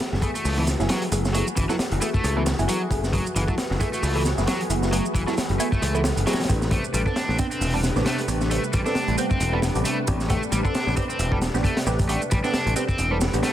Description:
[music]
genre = breakbeat, breaks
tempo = 134 BPM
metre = 4/4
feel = swing 56% on 16ths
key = unclear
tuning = A4 = 440 Hz
[part]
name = phased analog pad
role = sustained chords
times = 0.0-13.5 s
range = C3 to B4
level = -30 LUFS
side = equal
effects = phaser, chorus, sidechain pumping
[part]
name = crunchy breakbeat drum kit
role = drums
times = 0.0-13.5 s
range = hi-hat, kick drum, snare drum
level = -26 LUFS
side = equal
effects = none
[part]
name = shaker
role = drums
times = 0.0-13.5 s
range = none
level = -35 LUFS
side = right 4 dB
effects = none
[part]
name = modern bright picked electric bass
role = bass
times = 0.1-13.4 s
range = E1 to C#2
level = -24 LUFS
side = equal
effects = none
[part]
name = crunchy overdriven guitar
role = riff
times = 0.2-13.5 s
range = E3 to D4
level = -28 LUFS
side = equal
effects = tube saturation, tape echo
[part]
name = filtered dub chord stab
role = stabs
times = 0.2-13.5 s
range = A3 to A4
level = -29 LUFS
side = right 2 dB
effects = phaser, tape echo
[sound]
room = light reverb, studio ambience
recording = dense, heavily limited modern master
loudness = -21 LUFS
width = side -11 dB against mid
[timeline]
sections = 0.0-13.5 A section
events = none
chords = 0.0 F#m11; 6.5 Am11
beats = 0.00 0.45 0.90 | 1.34 1.79 2.24 2.69 | 3.14 3.58 4.03 4.48 | 4.93 5.38 5.82 6.27 | 6.72 7.17 7.61 8.06 | 8.51 8.96 9.40 9.85 | 10.30 10.75 11.20 11.64 | 12.09 12.54 12.99 13.43

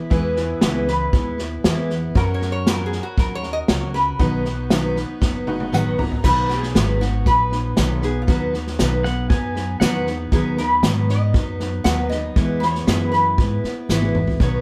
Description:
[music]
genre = honky-tonk and classic country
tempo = 118 BPM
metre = 4/4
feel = straight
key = B major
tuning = A4 = 438 Hz
[part]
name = lap resonator guitar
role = melody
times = 0.0-14.6 s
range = E#4 to F#5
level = -25 LUFS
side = equal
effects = none
[part]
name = picked steel-string acoustic guitar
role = accompaniment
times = 0.0-14.6 s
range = B2 to B4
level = -26 LUFS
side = equal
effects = none
[part]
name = tack piano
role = accompaniment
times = 0.0-6.2 s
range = C#4 to A#5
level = -34 LUFS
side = equal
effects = none
[part]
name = upright bass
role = bass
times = 0.1-14.6 s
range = F#1 to G#2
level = -26 LUFS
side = equal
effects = none
[part]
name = unplugged drum kit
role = drums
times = 0.1-14.5 s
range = crash cymbal, hi-hat, kick drum, snare drum, toms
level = -23 LUFS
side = equal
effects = none
[part]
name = pedal steel guitar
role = second line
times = 9.0-10.2 s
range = F#5 to G#5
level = -31 LUFS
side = equal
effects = none
[sound]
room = moderate studio ambience, RT60 0.4 s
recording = heard from further back in the room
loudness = -20 LUFS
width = mono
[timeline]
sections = 0.0-6.2 A section; 6.2-14.6 A section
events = drum fill 5.2-6.2, 13.9-14.4; honky-tonk piano fill 5.5-6.2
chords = 0.0 E; 2.2 F#; 4.2 B; 12.4 E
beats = | 0.12 0.63 1.14 1.65 | 2.16 2.67 3.18 3.69 | 4.20 4.71 5.22 5.73 | 6.24 6.75 7.26 7.77 | 8.28 8.79 9.30 9.81 | 10.32 10.83 11.34 11.86 | 12.37 12.88 13.38 13.89 | 14.40

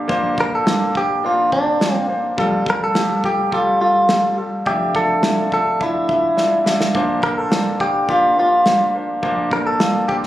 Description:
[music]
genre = piano-driven pop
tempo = 105 BPM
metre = 4/4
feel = straight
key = unclear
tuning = A4 = 444 Hz
[part]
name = warm grand piano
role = accompaniment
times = 0.0-10.3 s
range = F1 to E5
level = -20 LUFS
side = left 1 dB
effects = none
[part]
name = natural country drum kit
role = drums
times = 0.1-10.3 s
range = kick drum, snare drum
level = -21 LUFS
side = right 1 dB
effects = none
[part]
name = direct-recorded clean electric guitar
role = melody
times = 0.4-10.2 s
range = D4 to Bb4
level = -18 LUFS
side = equal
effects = none
[sound]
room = light reverb, studio ambience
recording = recorded on a phone in the room, club reverb, compression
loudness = -15 LUFS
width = side -14 dB against mid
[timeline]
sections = 0.0-10.3 A section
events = drum fill 6.4-6.9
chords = 0.0 Bbadd9; 2.4 Fadd9; 4.7 Dmadd9/F; 6.9 Bbadd9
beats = | 0.09 0.66 1.24 1.81 | 2.38 2.95 3.52 4.09 | 4.66 5.24 5.81 6.38 | 6.95 7.52 8.09 8.66 | 9.23 9.80

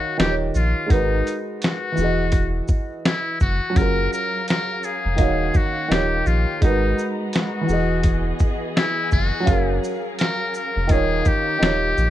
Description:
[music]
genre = lo-fi hip hop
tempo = 84 BPM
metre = 4/4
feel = swing 60% on 16ths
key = unclear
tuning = A4 = 439 Hz
[part]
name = trumpet with metal mute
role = melody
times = 0.0-12.1 s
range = D#4 to A#4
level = -25 LUFS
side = left 3 dB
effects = low-pass filter, plate reverb
[part]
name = dark upright piano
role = accompaniment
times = 0.0-12.1 s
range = D#3 to E#5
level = -24 LUFS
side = right 1 dB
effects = cassette tape, low-pass filter
[part]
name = soft dub sub bass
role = bass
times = 0.2-12.1 s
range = D#1 to A#1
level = -22 LUFS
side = equal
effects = none
[part]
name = lo-fi sampler-style drum kit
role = drums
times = 0.2-12.1 s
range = finger snaps, hi-hat, kick drum, shaker, snare drum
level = -20 LUFS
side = equal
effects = none
[part]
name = warm studio string section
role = sustained chords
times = 3.8-12.1 s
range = D#3 to A#5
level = -30 LUFS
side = left 1 dB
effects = low-pass filter
[sound]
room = moderate studio reverb, RT60 0.5 s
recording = none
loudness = -18 LUFS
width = side -13 dB against mid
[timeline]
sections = 0.0-12.1 A section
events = none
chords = 0.2 D#7; 0.9 G#m7; 2.0 Emaj9; 3.8 F#maj7; 5.2 D#m7; 5.9 D#7; 6.6 G#m7; 7.7 Emaj9; 9.5 F#maj7; 10.9 D#5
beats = 0.19 | 0.90 1.62 2.33 3.04 | 3.76 4.47 5.19 5.90 | 6.62 7.33 8.04 8.76 | 9.47 10.19 10.90 11.62

